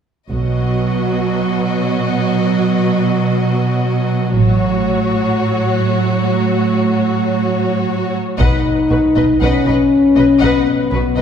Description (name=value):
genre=cinematic, epic orchestral film score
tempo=119 BPM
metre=4/4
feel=straight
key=unclear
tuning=A4 = 439 Hz
part: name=rich chamber violin section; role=second line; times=0.3-11.2 s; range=F#4 to D#5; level=-23 LUFS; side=left 4 dB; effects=none
part: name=rich symphonic viola section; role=accompaniment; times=0.3-11.2 s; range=F#3 to B4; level=-19 LUFS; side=right 3 dB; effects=none
part: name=rich symphonic cello section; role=bass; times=0.3-11.2 s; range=A2 to B2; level=-19 LUFS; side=right 2 dB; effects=none
part: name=rich symphonic double bass section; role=bass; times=0.3-0.8, 4.4-4.8, 8.4-11.2 s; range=A1 to B1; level=-19 LUFS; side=right 2 dB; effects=none
part: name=warm symphonic violin section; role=melody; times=8.4-11.2 s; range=B4 to F#5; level=-27 LUFS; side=left 5 dB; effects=none
part: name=mellow French horn section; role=sustained chords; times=8.4-11.2 s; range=B3 to D#4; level=-13 LUFS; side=left 3 dB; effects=none
part: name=taiko ensemble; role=drums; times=8.4-9.4 s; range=none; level=-21 LUFS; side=left 1 dB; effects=none
room=wet concert hall reverb, RT60 2.2 s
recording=heard from further back in the room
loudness=-13 LUFS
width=side -8 dB against mid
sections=0.3-8.4 A section; 8.4-11.2 B section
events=none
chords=0.3 B; 4.4 F#m/A; 8.4 B